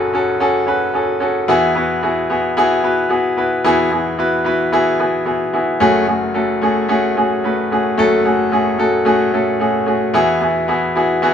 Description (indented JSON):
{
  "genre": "pop",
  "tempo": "111 BPM",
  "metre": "4/4",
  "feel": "straight",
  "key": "F# minor",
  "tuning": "A4 = 440 Hz",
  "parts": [
    { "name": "clear baby grand piano", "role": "solo", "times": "0.0-11.3 s", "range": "F#1 to B4", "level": "-14 LUFS", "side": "left 1 dB", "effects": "none" }
  ],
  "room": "moderate studio reverb, RT60 0.6 s",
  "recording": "band playing live in one room",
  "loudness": "-14 LUFS",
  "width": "side -8 dB against mid",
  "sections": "0.0-11.3 A section",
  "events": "none",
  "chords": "0.0 F#madd9; 1.5 Eadd9; 5.8 F#madd9; 10.1 Eadd9"
}